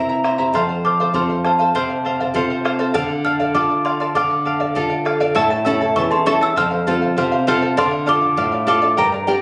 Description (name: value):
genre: andean folk, Andean ensemble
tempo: 100 BPM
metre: 2/4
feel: straight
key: D minor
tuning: A4 = 439 Hz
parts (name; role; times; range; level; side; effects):
- charango; accompaniment; 0.0-9.4 s; E4 to Bb5; -22 LUFS; equal; none
- nylon-string guitar; accompaniment; 0.0-9.4 s; E2 to Bb4; -23 LUFS; equal; none
- bombo; percussion; 0.2-9.1 s; none; -34 LUFS; equal; none
- celesta; melody; 0.6-9.4 s; A5 to F6; -22 LUFS; equal; none
room: light reverb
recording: recorded on a phone in the room, club reverb, compression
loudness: -18 LUFS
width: mono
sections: 0.0-5.4 A section; 5.4-9.4 B section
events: none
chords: 0.0 C7; 0.5 F; 3.0 Dm; 5.4 A; 6.6 F; 7.8 Dm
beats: | 0.54 1.14 | 1.75 2.35 | 2.95 3.55 | 4.16 4.76 | 5.36 5.96 | 6.56 7.17 | 7.77 8.37 | 8.97